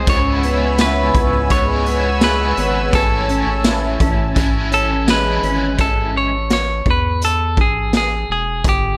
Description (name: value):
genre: dream pop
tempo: 84 BPM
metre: 4/4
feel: straight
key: A major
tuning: A4 = 440 Hz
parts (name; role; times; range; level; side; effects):
- clean electric guitar; melody; 0.0-9.0 s; G4 to C#5; -22 LUFS; equal; digital delay
- crunchy overdriven guitar; accompaniment; 0.0-6.3 s; A2 to E4; -28 LUFS; equal; tremolo, analog chorus
- phased analog pad; sustained chords; 0.0-5.8 s; C#5 to E6; -26 LUFS; equal; phaser, chorus
- electric guitar through a small old amp; arpeggios; 0.0-6.4 s; C#3 to E4; -24 LUFS; equal; ensemble chorus, digital delay
- round analog bass; bass; 0.0-9.0 s; E1 to E2; -24 LUFS; equal; none
- raw garage drum kit; drums; 0.1-8.8 s; hi-hat, kick drum, snare drum, tambourine; -21 LUFS; equal; none
room: light reverb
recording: none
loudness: -17 LUFS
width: mono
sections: 0.0-5.8 A section; 5.8-9.0 B section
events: none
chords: 0.1 C#m7; 2.9 Amaj7; 5.8 A5